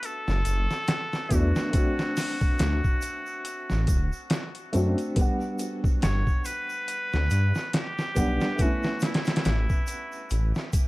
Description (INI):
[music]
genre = trip hop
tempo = 70 BPM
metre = 4/4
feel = swing 57% on 16ths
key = unclear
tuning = A4 = 439 Hz
[part]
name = trumpet with straight mute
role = melody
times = 0.0-10.7 s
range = E4 to C#5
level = -32 LUFS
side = equal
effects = vintage 12-bit sampler grit, dub echo
[part]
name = felt-muted upright piano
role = accompaniment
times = 0.0-10.9 s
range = G3 to F#5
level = -31 LUFS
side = equal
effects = tremolo, tape echo
[part]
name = boom bap sampler-style drum kit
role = drums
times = 0.0-10.9 s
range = hi-hat, kick drum, snare drum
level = -26 LUFS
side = equal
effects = studio reverb
[part]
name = egg shaker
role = percussion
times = 0.0-10.9 s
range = none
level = -45 LUFS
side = right 3 dB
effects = none
[part]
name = dark detuned saw bass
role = bass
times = 0.3-10.5 s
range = D1 to G2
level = -24 LUFS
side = equal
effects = none
[sound]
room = studio ambience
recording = vinyl crackle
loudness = -24 LUFS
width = side -20 dB against mid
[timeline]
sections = 0.0-10.9 A section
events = none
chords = 0.0 Bm7; 1.7 D7; 5.2 Gmaj7; 8.6 Aadd9